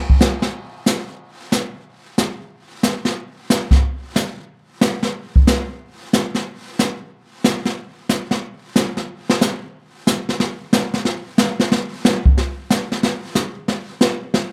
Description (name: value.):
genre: jazz.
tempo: 183 BPM.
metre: 4/4.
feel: swing 64% on 8ths.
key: none.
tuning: none.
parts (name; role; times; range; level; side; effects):
jazz brush drum kit; drums; 0.1-14.5 s; brushed snare drum, hi-hat, kick drum, snare drum; -18 LUFS; equal; none.
room: light reverb.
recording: close, detailed microphones.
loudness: -20 LUFS.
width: mono.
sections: 0.0-10.4 A section; 10.4-14.5 B section.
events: none.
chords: none.